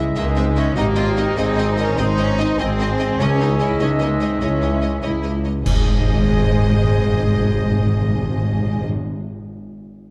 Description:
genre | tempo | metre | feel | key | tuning
cinematic, heroic adventure film score | 98 BPM (dotted quarters) | 12/8 | straight | Ab major | A4 = 440 Hz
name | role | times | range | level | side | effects
bright symphonic violin section | melody | 0.0-8.9 s | Eb5 to Fb5 | -35 LUFS | equal | none
clear oboe | second line | 0.0-8.9 s | Eb5 to Fb5 | -36 LUFS | equal | none
mellow clarinet | second line | 0.0-8.9 s | C5 to Eb5 | -36 LUFS | equal | none
rich symphonic violin section | second line | 0.0-8.9 s | C5 to Eb5 | -37 LUFS | equal | none
rich symphonic viola section | accompaniment | 0.0-8.9 s | Ab3 to C4 | -32 LUFS | equal | none
dark French horn section | sustained chords | 0.0-8.9 s | Eb4 to C5 | -28 LUFS | equal | none
concert harp | arpeggios | 0.0-9.6 s | Ab2 to Eb6 | -33 LUFS | equal | none
clear symphonic double bass section | bass | 0.0-8.9 s | Ab1 to Db2 | -24 LUFS | equal | none
rich symphonic cello section | bass | 0.0-8.9 s | Ab2 to F4 | -27 LUFS | equal | none
mellow flute section | second line | 0.1-8.9 s | Eb5 to C6 | -36 LUFS | equal | none
dark trumpet section | stabs | 0.2-8.9 s | Ab3 to Ab4 | -32 LUFS | equal | none
timpani | percussion | 5.6-9.0 s | Ab2 | -24 LUFS | equal | none
clash cymbals and concert bass drum | percussion | 5.7-6.4 s | none | -25 LUFS | equal | none
room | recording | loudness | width
moderate scoring stage reverb, RT60 1.6 s | dark, warm production | -19 LUFS | mono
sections
0.0-5.7 A section; 5.7-8.1 B section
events
band accent 5.7-6.1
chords
0.0 Dbmadd9; 0.8 Ab; 3.2 Dbmadd9; 5.7 Ab

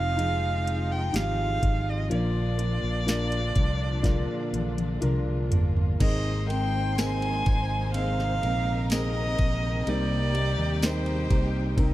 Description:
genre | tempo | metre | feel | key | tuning
pop ballad | 62 BPM | 4/4 | straight | unclear | A4 = 440 Hz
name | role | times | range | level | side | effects
warm violin | melody | 0.0-11.8 s | C5 to Ab5 | -31 LUFS | right 1 dB | none
felt-muted upright piano | accompaniment | 0.0-11.9 s | Ab2 to C5 | -33 LUFS | left 2 dB | none
rich studio string section | sustained chords | 0.0-11.9 s | Bb2 to F4 | -36 LUFS | left 1 dB | none
fingerpicked steel-string acoustic guitar | arpeggios | 0.0-11.9 s | Bb2 to Bb4 | -36 LUFS | right 6 dB | none
fingered electric bass | bass | 0.0-11.9 s | F1 to Eb2 | -28 LUFS | equal | none
smooth R&B drum kit | drums | 0.2-11.9 s | crash cymbal, hi-hat, kick drum, ride cymbal, snare drum, toms | -26 LUFS | equal | none
rich studio violin section | second line | 6.0-11.9 s | G4 to C6 | -40 LUFS | left 1 dB | none
tambourine | percussion | 7.0-11.0 s | none | -43 LUFS | left 7 dB | none
room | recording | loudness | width
studio ambience | dark, warm production | -24 LUFS | side -15 dB against mid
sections
0.0-6.0 A section; 6.0-11.9 B section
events
drum fill 4.0-6.0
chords
0.0 Fm7; 2.1 Bb; 6.0 Abadd9; 9.9 Cm7

